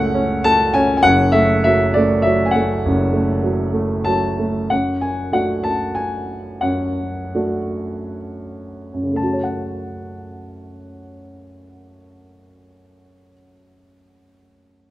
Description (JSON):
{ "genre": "classical, lyrical solo piano", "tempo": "55-101 BPM", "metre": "3/4", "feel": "rubato", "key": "F# minor", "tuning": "A4 = 440 Hz", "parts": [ { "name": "dark concert grand piano", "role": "solo", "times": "0.0-14.9 s", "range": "F#1 to A5", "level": "-16 LUFS", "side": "equal", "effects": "none" } ], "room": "moderate recital hall reverb, RT60 1.3 s", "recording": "none", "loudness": "-16 LUFS", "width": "side -15 dB against mid", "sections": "0.0-4.7 A section; 4.7-9.2 B section; 9.2-14.9 C section", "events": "slowing down 4.7-9.2", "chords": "0.0 F#m; 1.0 F#m9; 4.7 D/F#; 9.2 F#m", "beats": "0.44 | 1.05 1.65 2.25 | 2.85 3.44 4.07 | 4.71 5.33 5.96 | 6.62 7.36 8.20 | 9.18 10.26 11.31 | 12.35 13.39 14.45" }